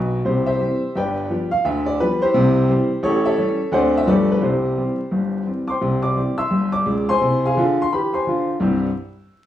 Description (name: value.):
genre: jazz, stride piano.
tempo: 172 BPM.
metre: 4/4.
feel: swing 61% on 8ths.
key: C major.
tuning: A4 = 440 Hz.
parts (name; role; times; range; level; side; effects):
clear upright piano; solo; 0.0-8.9 s; G1 to E6; -17 LUFS; left 1 dB; none.
room: moderate studio reverb, RT60 0.6 s.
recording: rough home demo mix, vinyl crackle, studio reverb.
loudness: -17 LUFS.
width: side -12 dB against mid.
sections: 0.0-5.8 A section; 5.8-8.6 B section.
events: none.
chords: 0.2 C; 0.9 G7; 1.6 G7/D; 2.3 C; 3.0 A7; 3.7 D7; 4.1 G9; 4.4 C; 7.2 Fm/C; 8.6 C.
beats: | 0.25 0.60 0.95 1.29 | 1.64 1.99 2.34 2.69 | 3.03 3.38 3.73 4.08 | 4.42 4.77 5.12 5.47 | 5.82 6.16 6.51 6.86 | 7.21 7.56 7.91 8.26 | 8.61.